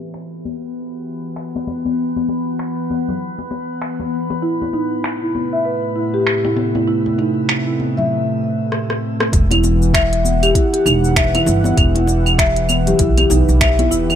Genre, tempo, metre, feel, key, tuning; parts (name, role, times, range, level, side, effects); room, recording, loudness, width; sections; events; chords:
organic downtempo; 98 BPM; 4/4; swing 59% on 16ths; E harmonic minor; A4 = 442 Hz
warm analog pad; sustained chords; 0.0-14.2 s; A2 to F#5; -23 LUFS; equal; chorus, sidechain pumping, shimmer reverb
drifting glass-harmonics texture; texture; 0.0-8.1 s; B3 to B4; -26 LUFS; left 3 dB; chorus, built-in reverb, shimmer reverb
organic electronic drum kit; drums; 0.1-14.2 s; claves, finger snaps, hi-hat, rim click, shaker; -20 LUFS; right 1 dB; overdrive
congas; percussion; 0.5-14.2 s; -26 LUFS; left 5 dB
marimba with soft mallets; arpeggios; 4.4-14.1 s; D#4 to E5; -19 LUFS; equal; ping-pong delay, shimmer reverb
upright bass; bass; 9.3-14.2 s; E1 to B1; -16 LUFS; equal; sidechain pumping
electronic kick drum; drums; 9.3-13.8 s; -18 LUFS; equal; overdrive
light reverb; low-pass filter; -14 LUFS; side -9 dB against mid
0.0-9.3 A section; 9.3-14.2 B section
filter sweep on analog synth pad 0.0-9.3; filter sweep 0.0-9.3; drum fill 8.7-9.3
0.0 Emadd9; 4.4 Am9; 9.3 Emadd9